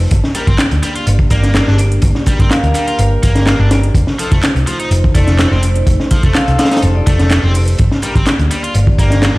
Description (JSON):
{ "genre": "breakbeat, breaks", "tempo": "125 BPM", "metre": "4/4", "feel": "straight", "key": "unclear", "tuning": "A4 = 441 Hz", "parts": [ { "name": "dark analog pad", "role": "sustained chords", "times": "0.0-9.4 s", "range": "A3 to D5", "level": "-24 LUFS", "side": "right 1 dB", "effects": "chorus, phaser, sidechain pumping" }, { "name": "clear brass ensemble", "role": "stabs", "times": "0.0-9.1 s", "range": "Bb3 to Bb4", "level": "-26 LUFS", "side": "left 1 dB", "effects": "vintage 12-bit sampler grit, digital delay" }, { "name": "picked electric bass", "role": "bass", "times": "0.0-9.4 s", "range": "F1 to D2", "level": "-13 LUFS", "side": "equal", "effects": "none" }, { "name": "crunchy breakbeat drum kit", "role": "drums", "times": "0.1-9.4 s", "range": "hi-hat, kick drum, snare drum", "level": "-14 LUFS", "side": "equal", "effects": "none" }, { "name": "house drum kit", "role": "drums", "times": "0.1-9.3 s", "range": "handclaps, hi-hat", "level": "-22 LUFS", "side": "right 1 dB", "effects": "none" }, { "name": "scooped high-gain guitar", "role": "riff", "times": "0.4-9.4 s", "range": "F3 to F4", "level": "-23 LUFS", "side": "equal", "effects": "distortion, tube saturation, vintage 12-bit sampler grit, digital delay" }, { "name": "vibraphone with hard mallets", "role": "melody", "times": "1.3-9.2 s", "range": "D5 to F5", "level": "-24 LUFS", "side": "left 1 dB", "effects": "AM radio sound, digital delay" } ], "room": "little or no reverb", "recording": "played on a big sound system in a bare room, stone room reverb", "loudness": "-10 LUFS", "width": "side -21 dB against mid", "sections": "0.0-9.4 A section", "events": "none", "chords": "0.1 Gm; 4.0 F7; 7.8 Gm", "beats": "| 0.11 0.59 1.07 1.55 | 2.03 2.51 2.99 3.47 | 3.95 4.43 4.91 5.39 | 5.87 6.35 6.83 7.31 | 7.79 8.27 8.75 9.23" }